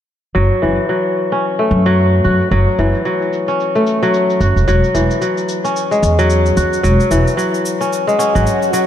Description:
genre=organic downtempo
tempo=111 BPM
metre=4/4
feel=swing 59% on 16ths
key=F# minor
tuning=A4 = 440 Hz
part: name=kora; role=arpeggios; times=0.3-8.9 s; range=E3 to F#4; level=-14 LUFS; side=left 1 dB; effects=low-pass filter, ping-pong delay
part: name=upright bass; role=bass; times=0.4-8.4 s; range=E1 to F#2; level=-14 LUFS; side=equal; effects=none
part: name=cabasa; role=drums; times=0.4-8.9 s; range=none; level=-30 LUFS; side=left 2 dB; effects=low-pass filter on perc, low-pass filter on room
part: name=swell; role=sound effects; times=8.1-8.9 s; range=none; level=-21 LUFS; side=right 1 dB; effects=none
room=moderate lush hall reverb, RT60 2.1 s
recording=dark, warm production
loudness=-12 LUFS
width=side -10 dB against mid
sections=0.4-8.9 A section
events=swell 8.1-8.9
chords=0.4 F#m7; 4.7 E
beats=| 0.35 0.89 1.44 1.98 | 2.52 3.06 3.60 4.14 | 4.68 5.22 5.76 6.30 | 6.84 7.38 7.92 8.46

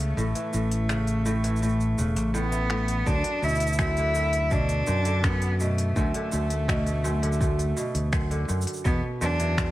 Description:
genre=folktronica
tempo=83 BPM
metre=4/4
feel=straight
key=unclear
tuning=A4 = 440 Hz
part: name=bright cello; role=melody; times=0.0-9.7 s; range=A3 to E4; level=-28 LUFS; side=equal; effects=ping-pong delay
part: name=kora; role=arpeggios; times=0.0-9.7 s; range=F#2 to E3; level=-31 LUFS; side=right 1 dB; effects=ping-pong delay
part: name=modern bright fingered electric bass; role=bass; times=0.0-9.7 s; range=E1 to F#2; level=-26 LUFS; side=equal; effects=none
part: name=organic electronic drum kit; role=drums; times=0.0-9.7 s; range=finger snaps, hi-hat, shaker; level=-34 LUFS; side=equal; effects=none
part: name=electronic kick drum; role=drums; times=3.1-9.7 s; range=none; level=-28 LUFS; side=equal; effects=none
room=light reverb, digital ambience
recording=vinyl crackle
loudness=-23 LUFS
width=side -16 dB against mid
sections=0.0-3.1 A section; 3.1-9.7 B section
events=kick drops out 0.2-3.1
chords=0.0 Aadd9; 3.1 D6; 8.9 Esus2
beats=| 0.18 0.90 1.62 2.35 | 3.07 3.79 4.52 5.24 | 5.96 6.68 7.41 8.13 | 8.85 9.58

